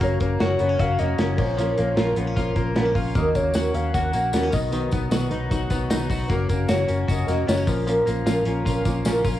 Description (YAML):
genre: jangly indie pop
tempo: 153 BPM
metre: 4/4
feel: straight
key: unclear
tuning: A4 = 442 Hz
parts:
  - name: warm velvety synth lead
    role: melody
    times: 0.0-8.5 s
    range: Bb4 to Gb5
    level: -27 LUFS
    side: left 1 dB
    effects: chorus, cassette tape, analog delay
  - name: fingerpicked plugged-in steel-string acoustic guitar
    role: accompaniment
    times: 0.0-9.4 s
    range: Bb2 to B4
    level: -25 LUFS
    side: right 2 dB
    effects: none
  - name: direct-recorded clean electric guitar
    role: arpeggios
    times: 0.0-9.4 s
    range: D#3 to Gb4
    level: -30 LUFS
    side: left 4 dB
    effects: analog chorus
  - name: vintage muted fingered electric bass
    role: bass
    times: 0.0-9.4 s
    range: F1 to Eb2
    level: -25 LUFS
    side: left 1 dB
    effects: none
  - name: modern studio drum kit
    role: drums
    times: 0.0-9.3 s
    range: crash cymbal, hi-hat, kick drum, snare drum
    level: -26 LUFS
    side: left 1 dB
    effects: cassette tape
  - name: tambourine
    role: percussion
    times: 3.2-9.3 s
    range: none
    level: -41 LUFS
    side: left 4 dB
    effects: none
room: light reverb, small room ambience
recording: home recording on cassette, studio ambience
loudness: -20 LUFS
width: side -13 dB against mid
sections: 0.0-9.4 A section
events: none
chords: 0.0 Gb; 1.4 Bbm; 3.2 Ebm7; 4.5 B; 6.3 Gb; 7.7 Bbm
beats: | 0.01 0.41 0.80 1.19 | 1.58 1.98 2.37 2.76 | 3.15 3.55 3.94 4.33 | 4.72 5.12 5.51 5.91 | 6.30 6.69 7.08 7.48 | 7.87 8.27 8.66 9.05